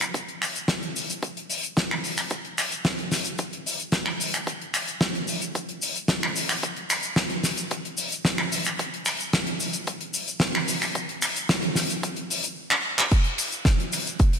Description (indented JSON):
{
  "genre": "nu-disco",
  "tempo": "111 BPM",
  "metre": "4/4",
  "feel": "straight",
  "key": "none",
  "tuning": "none",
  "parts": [
    { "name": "damped 70s drum kit", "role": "drums", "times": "0.0-14.4 s", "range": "crash cymbal, finger snaps, handclaps, hi-hat, ride cymbal, shaker, snare drum", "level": "-24 LUFS", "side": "equal", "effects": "none" },
    { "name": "electronic kick drum", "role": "drums", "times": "0.1-14.3 s", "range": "none", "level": "-23 LUFS", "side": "equal", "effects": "high-pass filter on kick, high-pass filter on room" }
  ],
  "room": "wet lush hall reverb, RT60 2.4 s",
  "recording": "bright 1980s-style digital production",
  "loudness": "-23 LUFS",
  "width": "side -7 dB against mid",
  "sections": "0.0-13.1 A section; 13.1-14.4 B section",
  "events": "build-up 0.0-13.1; drum fill 12.7-13.1; drop 13.1-14.4",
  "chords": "none"
}